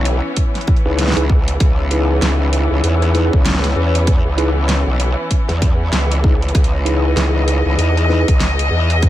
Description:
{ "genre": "glitch hop", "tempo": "97 BPM", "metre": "4/4", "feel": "swing 60% on 16ths", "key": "C# minor", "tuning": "A4 = 442 Hz", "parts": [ { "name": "dark studio string section", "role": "sustained chords", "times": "0.0-9.1 s", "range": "E3 to D#5", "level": "-22 LUFS", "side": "left 1 dB", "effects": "sidechain pumping" }, { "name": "growl bass", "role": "bass", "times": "0.0-9.1 s", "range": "B1 to E2", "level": "-16 LUFS", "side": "equal", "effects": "chorus, tube saturation" }, { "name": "pop drum kit", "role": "drums", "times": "0.1-9.1 s", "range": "hi-hat, rim click, snare drum", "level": "-22 LUFS", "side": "equal", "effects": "small room ambience" }, { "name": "electronic kick drum", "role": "drums", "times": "0.4-9.1 s", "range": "none", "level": "-15 LUFS", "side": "equal", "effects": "small room ambience" }, { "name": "mellow tine electric piano", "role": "stabs", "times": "0.9-8.3 s", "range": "D#4 to B4", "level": "-22 LUFS", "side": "left 1 dB", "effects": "medium stereo tremolo, sidechain pumping, ping-pong delay" } ], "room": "little or no reverb", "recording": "none", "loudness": "-13 LUFS", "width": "side -13 dB against mid", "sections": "0.0-9.1 A section", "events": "none", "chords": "0.0 C#m9" }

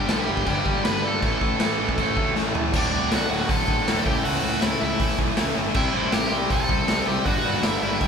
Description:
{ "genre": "punk rock", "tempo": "159 BPM", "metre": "4/4", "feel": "straight", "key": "D mixolydian", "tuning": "A4 = 440 Hz", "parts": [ { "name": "overdriven electric guitar", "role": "melody", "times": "0.0-8.1 s", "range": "D4 to B5", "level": "-27 LUFS", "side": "right 1 dB", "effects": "none" }, { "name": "heavy high-gain guitar", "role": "riff", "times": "0.0-8.1 s", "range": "D2 to C5", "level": "-32 LUFS", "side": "equal", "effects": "none" }, { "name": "overdriven semi-hollow guitar", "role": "riff", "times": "0.0-8.1 s", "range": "D2 to C4", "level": "-28 LUFS", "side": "left 9 dB", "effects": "none" }, { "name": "tight distorted guitar", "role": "riff", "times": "0.0-8.1 s", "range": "D2 to C4", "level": "-28 LUFS", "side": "right 10 dB", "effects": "distortion" }, { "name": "fuzz picked electric bass", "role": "bass", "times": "0.0-8.1 s", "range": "D1 to E2", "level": "-31 LUFS", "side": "equal", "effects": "overdrive" }, { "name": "raw garage drum kit", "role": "drums", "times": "0.1-8.1 s", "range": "crash cymbal, hi-hat, kick drum, snare drum, toms", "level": "-25 LUFS", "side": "equal", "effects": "none" } ], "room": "light reverb", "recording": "band playing live in one room", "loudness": "-20 LUFS", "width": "side -6 dB against mid", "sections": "0.0-2.7 A section; 2.7-8.1 B section", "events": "drum fill 2.4-2.7", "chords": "0.0 G; 1.2 A5; 2.7 D; 4.1 A/C#; 5.8 C; 7.3 G" }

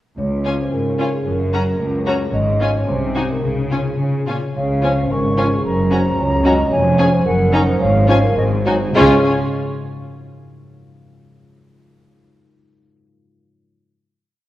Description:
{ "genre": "cinematic, playful, whimsical film cue", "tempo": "101-113 BPM", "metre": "2/4", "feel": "straight", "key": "Db major", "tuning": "A4 = 439 Hz", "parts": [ { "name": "vibraphone with soft mallets", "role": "melody", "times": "0.2-9.3 s", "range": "Ab4 to Eb5", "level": "-22 LUFS", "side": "right 2 dB", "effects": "none" }, { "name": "concert harp", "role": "arpeggios", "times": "0.2-9.3 s", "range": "F2 to F5", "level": "-23 LUFS", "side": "left 3 dB", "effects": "none" }, { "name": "rich chamber cello section", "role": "bass", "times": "0.2-9.3 s", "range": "Db2 to Db3", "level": "-22 LUFS", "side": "right 1 dB", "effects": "none" }, { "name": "rich chamber double bass section", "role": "bass", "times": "0.2-9.3 s", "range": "F1 to Db2", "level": "-22 LUFS", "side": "right 1 dB", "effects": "none" }, { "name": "rich chamber violin section", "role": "second line", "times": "0.4-9.3 s", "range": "Eb4 to Ab4", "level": "-29 LUFS", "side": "left 1 dB", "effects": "none" }, { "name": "rich chamber violin section", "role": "melody", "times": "0.5-9.3 s", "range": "Ab5 to Bb5", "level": "-29 LUFS", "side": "left 4 dB", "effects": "none" }, { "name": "rich symphonic viola section", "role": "accompaniment", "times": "0.5-9.3 s", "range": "Db4 to Eb4", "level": "-26 LUFS", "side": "equal", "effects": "none" }, { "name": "hollow concert flute", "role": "second line", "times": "4.6-9.3 s", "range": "Eb5 to Db6", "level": "-24 LUFS", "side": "left 1 dB", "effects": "none" }, { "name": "clear clarinet", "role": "second line", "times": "4.8-9.2 s", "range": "Db4 to F4", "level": "-27 LUFS", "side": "left 1 dB", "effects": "none" }, { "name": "dark bassoon", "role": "accompaniment", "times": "4.8-9.2 s", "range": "Eb3 to Ab3", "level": "-23 LUFS", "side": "equal", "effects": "none" }, { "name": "mellow French horn section", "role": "sustained chords", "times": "4.8-9.2 s", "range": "Eb3 to F4", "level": "-28 LUFS", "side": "left 2 dB", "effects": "none" } ], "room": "moderate scoring stage reverb, RT60 2.0 s", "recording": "worn, warbling old tape, cassette tape, warbly pitch drift", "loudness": "-15 LUFS", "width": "side -14 dB against mid", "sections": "0.2-4.6 A section; 4.6-9.0 A section; 9.0-10.1 final chord", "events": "none", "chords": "0.2 Db; 1.3 Gb; 2.3 Db/Ab; 2.9 Ab7/C; 3.4 Db; 5.6 Gb; 6.7 Db/F; 7.3 Ebm7/Gb; 7.8 Db/Ab; 8.4 Ab7; 9.0 Db" }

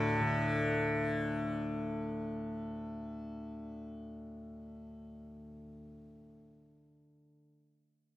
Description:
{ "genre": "indian classical", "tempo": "free time", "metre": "none", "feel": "none", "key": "unclear", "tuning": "A4 = 444 Hz", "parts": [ { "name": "tanpura", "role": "drone", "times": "0.0-7.4 s", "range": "D2 to D3", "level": "-35 LUFS", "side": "left 1 dB", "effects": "none" } ], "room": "moderate plate reverb, RT60 2.9 s", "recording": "rough home demo mix", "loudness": "-34 LUFS", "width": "side -14 dB against mid", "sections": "none", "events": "none", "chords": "none" }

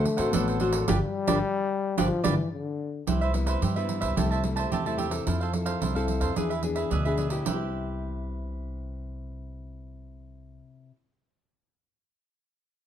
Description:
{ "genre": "samba and choro", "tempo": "110 BPM", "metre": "4/4", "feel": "straight", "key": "C major", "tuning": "A4 = 439 Hz", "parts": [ { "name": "breathy trombone", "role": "second line", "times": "0.0-3.0 s", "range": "D3 to B3", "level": "-28 LUFS", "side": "left 5 dB", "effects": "none" }, { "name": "cavaquinho", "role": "accompaniment", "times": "0.0-11.0 s", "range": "D4 to A5", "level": "-32 LUFS", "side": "right 6 dB", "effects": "none" }, { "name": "nylon-string guitar", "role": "accompaniment", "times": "0.0-11.1 s", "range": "G2 to A4", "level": "-32 LUFS", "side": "left 4 dB", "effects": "none" }, { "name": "upright bass", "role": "bass", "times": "0.0-10.6 s", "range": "G1 to G2", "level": "-30 LUFS", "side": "equal", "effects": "none" }, { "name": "pandeiro", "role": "percussion", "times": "0.1-7.6 s", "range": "none", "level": "-31 LUFS", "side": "right 7 dB", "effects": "none" } ], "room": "moderate large studio reverb, RT60 0.9 s", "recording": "none", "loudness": "-25 LUFS", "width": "side -10 dB against mid", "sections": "0.0-3.1 A section; 3.1-7.5 B section; 7.5-11.8 C section", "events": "band accent 0.9-3.1", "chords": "0.0 D7; 0.9 G7; 3.1 Cmaj7; 4.2 Am7/C; 5.3 Fmaj7; 6.4 E7; 7.5 Cmaj7" }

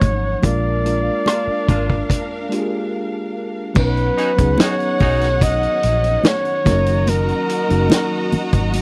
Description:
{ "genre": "lush 1970s-style soul", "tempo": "72 BPM", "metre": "4/4", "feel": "straight", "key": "unclear", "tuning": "A4 = 438 Hz", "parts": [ { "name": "warm flugelhorn", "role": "melody", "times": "0.0-8.7 s", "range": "Bb4 to D#5", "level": "-23 LUFS", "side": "equal", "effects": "none" }, { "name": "warm studio violin section", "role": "second line", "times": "0.0-8.8 s", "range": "D4 to Bb5", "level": "-30 LUFS", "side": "equal", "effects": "none" }, { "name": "mellow reed electric piano", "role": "accompaniment", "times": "0.0-8.8 s", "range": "F3 to B4", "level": "-26 LUFS", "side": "equal", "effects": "none" }, { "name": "vintage muted fingered electric bass", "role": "bass", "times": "0.0-8.8 s", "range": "Gb1 to C#2", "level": "-23 LUFS", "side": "equal", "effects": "none" }, { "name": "vintage drum kit", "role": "drums", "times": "0.0-8.8 s", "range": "crash cymbal, hi-hat, kick drum, rim click, snare drum", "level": "-20 LUFS", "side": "equal", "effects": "none" }, { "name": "congas", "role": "percussion", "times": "0.0-8.8 s", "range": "none", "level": "-25 LUFS", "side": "equal", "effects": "none" }, { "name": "warm horn section", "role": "stabs", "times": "1.3-5.3 s", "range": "Bb3 to F#4", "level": "-28 LUFS", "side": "equal", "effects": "none" }, { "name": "phased string machine", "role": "sustained chords", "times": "4.9-8.8 s", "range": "D#3 to F#4", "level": "-33 LUFS", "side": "equal", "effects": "none" } ], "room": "little or no reverb", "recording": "dry, close 1970s-style studio recording", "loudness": "-18 LUFS", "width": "mono", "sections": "0.0-3.8 A section; 3.8-8.8 B section", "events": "band accent 0.4-3.8; break 2.9-3.8", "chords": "0.4 Bb7; 3.8 Badd9; 6.7 Gb6" }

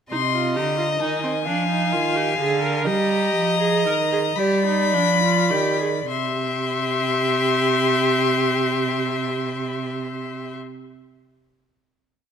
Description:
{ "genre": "classical, baroque-style fugue for string quartet", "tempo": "32-45 BPM (dotted quarters)", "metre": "6/8", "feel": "straight", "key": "C minor", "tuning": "A4 = 438 Hz", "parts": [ { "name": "rich violin", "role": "melody", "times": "0.1-10.6 s", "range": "Ab5 to C6", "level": "-25 LUFS", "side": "left 9 dB", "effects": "none" }, { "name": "warm violin", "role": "second line", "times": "0.1-10.6 s", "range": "D5 to F5", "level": "-25 LUFS", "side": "left 3 dB", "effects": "none" }, { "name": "clear viola", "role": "accompaniment", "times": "0.1-10.6 s", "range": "C4 to Bb4", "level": "-25 LUFS", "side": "right 2 dB", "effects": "none" }, { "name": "rich cello", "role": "bass", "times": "0.1-10.5 s", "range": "C3 to G3", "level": "-25 LUFS", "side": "right 6 dB", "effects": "none" } ], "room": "moderate scoring stage reverb, RT60 1.6 s", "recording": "none", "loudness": "-19 LUFS", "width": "side -7 dB against mid", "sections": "0.1-6.1 exposition; 6.1-9.8 final chord", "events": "slowing down 0.1-7.9", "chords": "0.1 Cm; 1.5 Ddim; 2.9 Ebadd9; 4.4 G7; 6.1 C" }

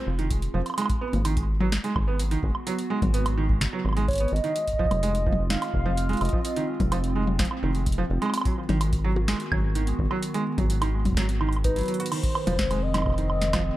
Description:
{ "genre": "IDM", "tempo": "127 BPM", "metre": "4/4", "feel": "straight", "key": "F phrygian", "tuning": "A4 = 440 Hz", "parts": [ { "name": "warm velvety synth lead", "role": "melody", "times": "0.0-0.1, 4.1-6.7, 11.6-13.8 s", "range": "Cb5 to F5", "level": "-30 LUFS", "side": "equal", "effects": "chorus, cassette tape, tape echo" }, { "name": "warbly tape-like pad", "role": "sustained chords", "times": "0.0-13.8 s", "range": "Eb3 to Gb4", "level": "-34 LUFS", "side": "equal", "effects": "chorus, built-in reverb" }, { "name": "felt-muted upright piano", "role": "arpeggios", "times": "0.0-13.6 s", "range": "Eb3 to Gb4", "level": "-30 LUFS", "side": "right 4 dB", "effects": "analog delay" }, { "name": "rubbery square bass", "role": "bass", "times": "0.1-13.7 s", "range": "F1 to Ab1", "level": "-26 LUFS", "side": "equal", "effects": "none" }, { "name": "booming analog drum machine", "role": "drums", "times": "0.2-13.6 s", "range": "crash cymbal, hi-hat, snare drum, toms, woodblock", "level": "-30 LUFS", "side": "equal", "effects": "analog delay" }, { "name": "electronic kick drum", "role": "drums", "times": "0.3-13.6 s", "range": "none", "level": "-28 LUFS", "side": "equal", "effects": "none" } ], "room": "light reverb", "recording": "echo-heavy mix", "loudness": "-23 LUFS", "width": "side -15 dB against mid", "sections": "0.0-12.1 A section; 12.1-13.8 B section", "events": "drum fill 11.9", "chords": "0.0 F5; 0.8 Abm7; 4.6 F7(no3); 8.3 Abm7; 12.1 F7(no3)" }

